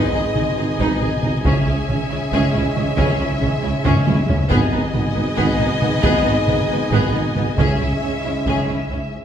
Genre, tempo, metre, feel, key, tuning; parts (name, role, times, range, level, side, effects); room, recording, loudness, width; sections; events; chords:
cinematic, epic orchestral film score; 274 BPM (eighths); 7/8; straight; G# minor; A4 = 440 Hz
rich studio violin section; melody; 0.0-9.1 s; D#5 to E5; -28 LUFS; left 5 dB
rich symphonic violin section; second line; 0.0-9.0 s; B3 to B4; -28 LUFS; left 3 dB
rich symphonic viola section; accompaniment; 0.0-9.0 s; B3 to D#4; -26 LUFS; right 2 dB
bright trombone section; sustained chords; 0.0-9.1 s; G#2 to G#3; -28 LUFS; right 1 dB
rich symphonic string section; sustained chords; 0.0-9.1 s; B3 to G#5; -27 LUFS; left 1 dB
warm French horn section; sustained chords; 0.0-9.1 s; B3 to E4; -31 LUFS; left 2 dB
mellow tuba; bass; 0.1-9.0 s; G#1 to C#2; -24 LUFS; right 2 dB
rich symphonic cello section; bass; 0.1-9.0 s; G#2 to C#3; -26 LUFS; right 2 dB
warm studio double bass section; bass; 0.1-9.0 s; G#1 to C#2; -26 LUFS; right 2 dB
taiko ensemble; drums; 0.4-8.9 s; -22 LUFS; equal
timpani; percussion; 4.5-5.1 s; G#2; -30 LUFS; left 1 dB
wet recital hall reverb, RT60 1.3 s; recorded in a church or concert hall; -16 LUFS; side -9 dB against mid
0.0-9.2 A section
build-up 0.0-9.2; drum fill 3.9-4.5
0.0 G#m; 1.5 C#m; 4.5 G#m; 7.6 C#m